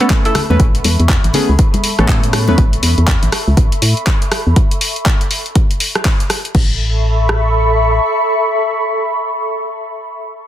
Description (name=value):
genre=deep house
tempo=121 BPM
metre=4/4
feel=swing 61% on 16ths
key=A major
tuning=A4 = 440 Hz
part: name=deep mellow chord stab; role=stabs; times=0.0-2.6 s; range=A3 to B4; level=-20 LUFS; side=equal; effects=chorus, sidechain pumping, analog delay
part: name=deep house drum kit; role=drums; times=0.0-6.7 s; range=crash cymbal, handclaps, hi-hat, rim click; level=-18 LUFS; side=equal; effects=none
part: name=ethereal airy pad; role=texture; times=0.0-10.0 s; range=A4 to C#6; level=-19 LUFS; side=equal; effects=ensemble chorus, built-in reverb, sidechain pumping
part: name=deep house drum kit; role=drums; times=0.1-7.4 s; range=kick drum, rim click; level=-13 LUFS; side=equal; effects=none
part: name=congas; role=percussion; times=0.1-2.6 s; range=none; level=-22 LUFS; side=left 3 dB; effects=none
part: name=organ-like FM bass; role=bass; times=0.5-8.0 s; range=A1 to A2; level=-14 LUFS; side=equal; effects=sidechain pumping
room=light reverb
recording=dense, heavily limited modern master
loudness=-12 LUFS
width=side -12 dB against mid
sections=0.0-6.5 A section; 6.5-10.5 B section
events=drop 0.0-6.5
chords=0.0 Aadd9